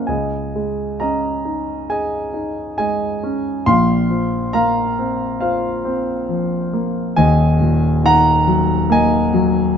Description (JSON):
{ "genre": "classical, lyrical solo piano", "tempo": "68 BPM", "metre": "4/4", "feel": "rubato", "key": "Db major", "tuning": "A4 = 440 Hz", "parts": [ { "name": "warm grand piano", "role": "solo", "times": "0.0-9.8 s", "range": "Eb1 to C6", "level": "-15 LUFS", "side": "equal", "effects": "none" } ], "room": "light reverb", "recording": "dark, warm production, nothing above 7.5 kHz", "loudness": "-15 LUFS", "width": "side -7 dB against mid", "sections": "0.1-9.8 A section", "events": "none", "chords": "0.1 Dbsus2; 3.7 Bbsus2; 7.2 Ebm", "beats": "| 0.09 1.00 1.90 2.79 | 3.67 4.54 5.41 6.29 | 7.17 8.04 8.91" }